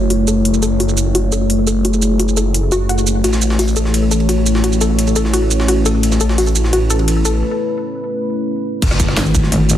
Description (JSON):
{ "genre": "dark technical drum and bass", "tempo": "172 BPM", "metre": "4/4", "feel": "straight", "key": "F# minor", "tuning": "A4 = 439 Hz", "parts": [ { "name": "deep dark ambient pad", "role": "sustained chords", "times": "0.0-9.8 s", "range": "A3 to C#5", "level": "-18 LUFS", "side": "left 1 dB", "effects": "chorus, built-in reverb, sidechain pumping" }, { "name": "phased detuned saw bass", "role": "bass", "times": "0.0-9.2 s", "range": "F#1 to A1", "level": "-16 LUFS", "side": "equal", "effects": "phaser, tube saturation, sidechain pumping" }, { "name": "downlifter and impact", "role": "sound effects", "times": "0.0-0.5, 8.8-9.8 s", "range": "none", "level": "-23 LUFS", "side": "equal", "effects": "none" }, { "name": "warbly dusty pluck", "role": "arpeggios", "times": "0.1-7.4 s", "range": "F#4 to F#5", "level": "-21 LUFS", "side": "left 2 dB", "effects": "chorus, sidechain pumping, digital delay" }, { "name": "drum and bass drum kit", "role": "drums", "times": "0.1-9.8 s", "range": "crash cymbal, hi-hat, rim click, shaker, snare drum", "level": "-21 LUFS", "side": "right 2 dB", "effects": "studio reverb" }, { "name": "jungle sampler-style drum kit", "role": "drums", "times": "3.2-9.8 s", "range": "hi-hat, ride cymbal, snare drum", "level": "-28 LUFS", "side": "right 2 dB", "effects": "overdrive, high-pass filter on cymbals, studio reverb, high-pass filter on snare, high-pass filter on hats" }, { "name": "electronic kick drum", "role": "drums", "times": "8.8-9.4 s", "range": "none", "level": "-16 LUFS", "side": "equal", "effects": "studio reverb" }, { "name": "metallic wobble bass", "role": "bass", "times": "9.2-9.8 s", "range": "G#1", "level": "-14 LUFS", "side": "equal", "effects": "distortion, chorus" } ], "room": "moderate lush hall reverb, RT60 1.6 s", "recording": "dense, heavily limited modern master", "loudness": "-13 LUFS", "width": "side -11 dB against mid", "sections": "0.0-8.8 A section", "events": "filter sweep on synth arpeggio sound 0.0-8.8; break 7.4-8.8; impact 8.8-9.8", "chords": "0.0 F#m7; 3.2 A; 8.8 F#m7", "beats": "0.10 | 0.45 0.80 1.15 1.50 | 1.85 2.19 2.54 2.89 | 3.24 3.59 3.94 4.29 | 4.64 4.99 5.33 5.68 | 6.03 6.38 6.73 7.08 | 7.43 7.78 8.13 8.47 | 8.82 9.17 9.52" }